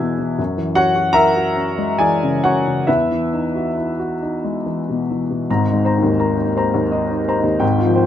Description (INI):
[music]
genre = classical, impressionist solo piano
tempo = 67-86 BPM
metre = 3/4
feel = rubato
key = unclear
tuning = A4 = 439 Hz
[part]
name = warm grand piano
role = solo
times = 0.0-8.1 s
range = Ab1 to G#6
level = -16 LUFS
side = left 1 dB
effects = none
[sound]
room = moderate stone room reverb, RT60 1.2 s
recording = nothing above 11.0 kHz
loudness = -16 LUFS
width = side -10 dB against mid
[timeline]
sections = 0.0-5.5 A section; 5.5-8.1 B section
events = none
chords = 0.4 F#9; 2.9 Emaj9; 5.5 Abadd9